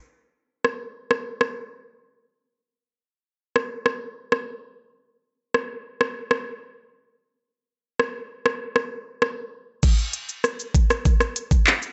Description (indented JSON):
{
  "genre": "dancehall",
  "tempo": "98 BPM",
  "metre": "4/4",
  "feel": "straight",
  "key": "none",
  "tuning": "none",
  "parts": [
    { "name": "island pop drum kit", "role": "drums", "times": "0.6-11.9 s", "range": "crash cymbal, handclaps, hi-hat, kick drum, rim click, shaker", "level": "-23 LUFS", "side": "equal", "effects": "overdrive" }
  ],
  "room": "light reverb, digital ambience",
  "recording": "nothing above 8.0 kHz",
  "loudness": "-24 LUFS",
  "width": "mono",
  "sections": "0.0-9.8 A section; 9.8-11.9 B section",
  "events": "kick muted 7.4-9.8",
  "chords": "none",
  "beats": "| 0.03 0.65 1.26 1.87 | 2.48 3.10 3.71 4.32 | 4.93 5.54 6.16 6.77 | 7.38 7.99 8.61 9.22 | 9.83 10.44 11.05 11.67"
}